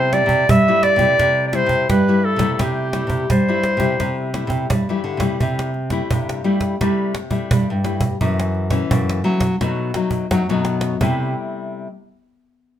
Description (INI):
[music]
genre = samba and choro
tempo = 86 BPM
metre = 4/4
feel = straight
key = C major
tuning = A4 = 440 Hz
[part]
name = warm clarinet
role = melody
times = 0.0-4.3 s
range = G4 to E5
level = -17 LUFS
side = equal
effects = none
[part]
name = nylon-string guitar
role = accompaniment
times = 0.0-11.9 s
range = F#2 to E4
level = -23 LUFS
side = left 6 dB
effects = none
[part]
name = nylon-string guitar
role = bass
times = 0.0-11.3 s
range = F#2 to G3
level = -21 LUFS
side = right 1 dB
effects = none
[part]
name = cajon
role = drums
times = 0.1-11.2 s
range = none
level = -22 LUFS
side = right 2 dB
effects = none
[sound]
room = moderate studio reverb, RT60 0.8 s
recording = minimal, uncompressed stereo recording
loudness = -16 LUFS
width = side -10 dB against mid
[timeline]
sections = 0.0-5.4 A section; 5.4-11.0 B section; 11.0-12.8 C section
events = drum fill 10.3-11.0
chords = 0.0 C6; 8.2 F#m7; 9.6 B7; 11.0 C6